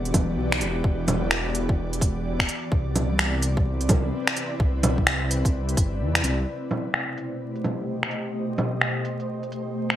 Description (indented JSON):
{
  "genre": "future garage",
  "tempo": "128 BPM",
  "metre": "4/4",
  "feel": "swing 63% on 16ths",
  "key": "unclear",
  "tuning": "A4 = 441 Hz",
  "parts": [
    { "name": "ethereal airy pad", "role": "sustained chords", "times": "0.0-10.0 s", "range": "B2 to D#5", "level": "-29 LUFS", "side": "equal", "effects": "ensemble chorus, built-in reverb, sidechain pumping" },
    { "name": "swelling detuned saw bass", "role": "bass", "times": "0.0-6.5 s", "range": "E1 to E2", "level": "-26 LUFS", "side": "equal", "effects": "tube saturation, sidechain pumping" },
    { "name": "electronic kick drum", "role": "drums", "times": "0.1-5.9 s", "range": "none", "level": "-23 LUFS", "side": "equal", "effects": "none" },
    { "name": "garage drum kit", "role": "drums", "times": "0.1-10.0 s", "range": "bongos, finger snaps, hi-hat", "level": "-25 LUFS", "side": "equal", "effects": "low-pass filter on hats, low-pass filter on perc, low-pass filter on snare, low-pass filter on room, gated reverb" }
  ],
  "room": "light reverb",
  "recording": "bright 1980s-style digital production, vinyl crackle",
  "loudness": "-22 LUFS",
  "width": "side -12 dB against mid",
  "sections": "0.0-6.5 A section; 6.5-10.0 B section",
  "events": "kick drops out 6.0-6.5; filter sweep on ambient pad 6.5-10.0",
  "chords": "0.0 Em7; 2.7 Cmaj7; 6.5 B7b9b13",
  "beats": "0.38 | 0.85 1.32 1.78 2.25 | 2.72 3.19 3.66 4.13 | 4.60 5.07 5.54 6.00 | 6.47 6.94 7.41 7.88 | 8.35 8.82 9.29 9.75"
}